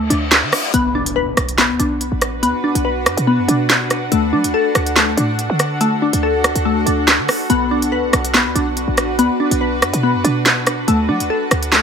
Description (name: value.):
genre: hip hop, drill.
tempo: 142 BPM.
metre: 4/4.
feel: half-time.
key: B minor.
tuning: A4 = 440 Hz.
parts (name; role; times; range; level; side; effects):
glassy wavetable pluck; arpeggios; 0.0-11.8 s; A3 to B4; -18 LUFS; left 2 dB; chorus, tape echo.
short 808-style bass; bass; 0.0-11.8 s; A1 to F#3; -22 LUFS; right 1 dB; none.
reverse cymbal and impact; sound effects; 0.0-2.4 s; none; -26 LUFS; left 1 dB; none.
drill drum kit; drums; 0.1-11.8 s; handclaps, hi-hat, rim click, snare drum; -16 LUFS; right 1 dB; none.
granular cloud pad; sustained chords; 1.8-11.8 s; D4 to F#5; -22 LUFS; equal; built-in reverb.
room: light reverb.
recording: none.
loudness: -14 LUFS.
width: side -6 dB against mid.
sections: 0.7-11.8 A section.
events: reverse cymbal 0.0-0.7; impact 0.7-2.4.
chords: 0.0 D5; 0.7 Bm; 4.1 D; 7.5 Bm; 10.9 D.